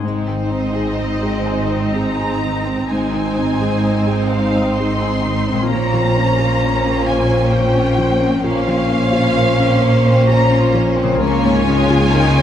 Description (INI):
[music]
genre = cinematic, emotional film score for orchestra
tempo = 65 BPM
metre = 3/4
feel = rubato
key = Ab major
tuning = A4 = 440 Hz
[part]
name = warm symphonic violin section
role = second line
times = 0.0-12.4 s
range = Ab3 to Db5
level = -24 LUFS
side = left 2 dB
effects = none
[part]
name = felt-muted upright piano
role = accompaniment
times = 0.0-12.4 s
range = Db2 to Ab5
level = -22 LUFS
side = left 1 dB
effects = none
[part]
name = rich symphonic viola section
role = accompaniment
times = 0.0-12.4 s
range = Ab3 to Eb4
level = -22 LUFS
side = right 1 dB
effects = none
[part]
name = dark French horn section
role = sustained chords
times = 0.0-12.4 s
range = Bb3 to C5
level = -22 LUFS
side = equal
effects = none
[part]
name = concert harp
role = arpeggios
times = 0.0-12.4 s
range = Ab2 to Eb5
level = -26 LUFS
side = left 9 dB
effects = none
[part]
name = warm studio cello section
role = bass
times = 0.0-12.4 s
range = Ab2 to Db3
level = -22 LUFS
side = right 1 dB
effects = none
[part]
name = warm symphonic double bass section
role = bass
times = 0.0-12.4 s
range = Ab1 to Db2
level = -21 LUFS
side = right 1 dB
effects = none
[part]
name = warm symphonic violin section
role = melody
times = 0.5-12.4 s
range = Eb5 to C6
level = -23 LUFS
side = left 1 dB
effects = none
[sound]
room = moderate scoring stage reverb, RT60 1.9 s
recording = none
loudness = -14 LUFS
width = side -10 dB against mid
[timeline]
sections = 0.0-12.4 A section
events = none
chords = 0.0 Ab; 5.7 Bbmadd9; 11.2 Db6